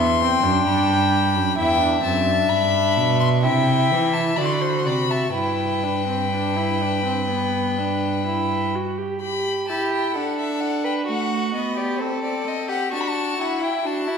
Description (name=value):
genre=classical, baroque-style fugue for string quartet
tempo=64 BPM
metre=4/4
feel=straight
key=G major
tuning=A4 = 440 Hz
part: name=rich violin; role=melody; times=0.0-14.2 s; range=C5 to C6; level=-25 LUFS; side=left 7 dB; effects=none
part: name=warm violin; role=second line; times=0.0-14.2 s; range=D4 to G5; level=-24 LUFS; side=left 2 dB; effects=none
part: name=warm viola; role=accompaniment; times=0.0-14.2 s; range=A3 to G4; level=-25 LUFS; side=right 2 dB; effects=none
part: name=rich cello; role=bass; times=0.0-8.7 s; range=E2 to E3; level=-24 LUFS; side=right 4 dB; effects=none
room=wet scoring stage reverb, RT60 1.9 s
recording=recorded in a church or concert hall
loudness=-19 LUFS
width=side -6 dB against mid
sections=0.0-9.2 A section; 9.2-14.2 B section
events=none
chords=0.0 C/E; 1.6 Em; 3.4 C; 4.4 D7; 5.3 G; 11.1 F#dim7/A; 12.9 D